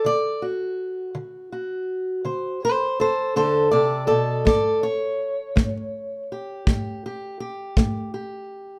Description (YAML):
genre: acoustic country blues, solo or duo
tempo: 54 BPM (dotted quarters)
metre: 12/8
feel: straight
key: D mixolydian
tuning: A4 = 440 Hz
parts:
  - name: fingerpicked steel-string acoustic guitar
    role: melody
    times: 0.0-8.8 s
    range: B2 to D5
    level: -25 LUFS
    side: equal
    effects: none
  - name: kick drum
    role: drums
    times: 4.5-7.9 s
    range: none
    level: -24 LUFS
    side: equal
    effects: none
room: light reverb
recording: none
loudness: -23 LUFS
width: mono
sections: 0.0-8.8 A section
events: steel-string acoustic guitar solo 0.0-8.8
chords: 0.0 D7; 4.5 A7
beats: | 0.06 1.16 2.26 3.37 | 4.47 5.57 6.67 7.77